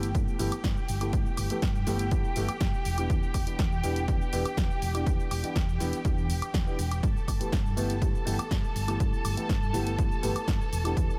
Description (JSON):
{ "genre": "filtered disco house", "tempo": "122 BPM", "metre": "4/4", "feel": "straight", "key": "unclear", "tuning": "A4 = 441 Hz", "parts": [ { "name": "dark baby grand piano", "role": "accompaniment", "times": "0.0-11.2 s", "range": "E3 to G4", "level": "-37 LUFS", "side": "equal", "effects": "phaser, vintage 12-bit sampler grit, sidechain pumping, low-pass filter" }, { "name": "clear studio violin section", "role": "sustained chords", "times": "0.0-11.2 s", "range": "G4 to A5", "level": "-39 LUFS", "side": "equal", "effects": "sidechain pumping, low-pass filter" }, { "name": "hollow-body short-scale fingered electric bass", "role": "bass", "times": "0.0-11.1 s", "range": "E1 to G2", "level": "-34 LUFS", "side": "equal", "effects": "sidechain pumping, low-pass filter" }, { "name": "punchy analog drum machine", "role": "drums", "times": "0.0-11.2 s", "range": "cabasa, hi-hat, snare drum, woodblock", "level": "-39 LUFS", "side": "equal", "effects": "sidechain pumping on hats, sidechain pumping on perc" }, { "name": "electronic kick drum", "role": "drums", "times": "0.1-11.1 s", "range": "none", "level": "-31 LUFS", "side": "equal", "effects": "none" } ], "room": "light reverb", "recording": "none", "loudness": "-28 LUFS", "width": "mono", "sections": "0.0-11.2 A section", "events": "none", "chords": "0.0 G69; 2.9 Em7; 7.0 G69" }